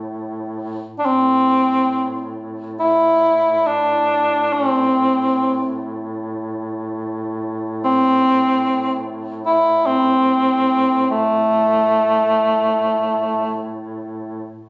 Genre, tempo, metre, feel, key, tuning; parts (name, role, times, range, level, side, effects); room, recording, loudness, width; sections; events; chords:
caucasian folk, Caucasian lament; free time; A minor; A4 = 440 Hz
warm duduk; drone; 0.0-14.6 s; A2; -27 LUFS; equal
dark cor anglais; melody; 1.0-13.7 s; A3 to E4; -15 LUFS; equal
moderate recital hall reverb, RT60 1.7 s; recorded on a phone in the room, studio reverb, nothing above 7.7 kHz; -15 LUFS; side -25 dB against mid
0.0-14.7 A section